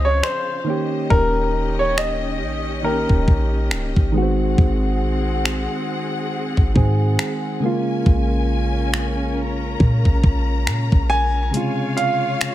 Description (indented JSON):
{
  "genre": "contemporary R&B",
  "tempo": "69 BPM",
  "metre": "4/4",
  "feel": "swing 58% on 16ths",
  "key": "Bb minor",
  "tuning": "A4 = 439 Hz",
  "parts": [
    { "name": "clear baby grand piano", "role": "melody", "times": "0.0-4.1, 11.1-12.5 s", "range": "Bb4 to Ab5", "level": "-22 LUFS", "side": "equal", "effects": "ping-pong delay" },
    { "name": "soft electric-piano-like synth keys", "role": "accompaniment", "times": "0.0-12.5 s", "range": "C3 to Ab4", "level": "-24 LUFS", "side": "right 1 dB", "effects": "chorus" },
    { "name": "rich studio string section", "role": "sustained chords", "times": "0.0-12.5 s", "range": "Db3 to Bb5", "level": "-28 LUFS", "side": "left 3 dB", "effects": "none" },
    { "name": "clean 808-style bass", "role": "bass", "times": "0.0-11.5 s", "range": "Db1 to Bb2", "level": "-20 LUFS", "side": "equal", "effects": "none" },
    { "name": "gated 80s digital drum machine", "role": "drums", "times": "0.2-12.5 s", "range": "finger snaps, hi-hat, kick drum", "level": "-18 LUFS", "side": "equal", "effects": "none" }
  ],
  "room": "little or no reverb",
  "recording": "none",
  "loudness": "-17 LUFS",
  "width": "side -14 dB against mid",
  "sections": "0.0-12.5 A section",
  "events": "break 0.0-11.5; kick muted 11.5-12.4",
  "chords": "0.0 Dbmaj7; 0.7 Eb7; 4.2 Ab7; 7.6 Bbm7; 11.5 Dbmaj7"
}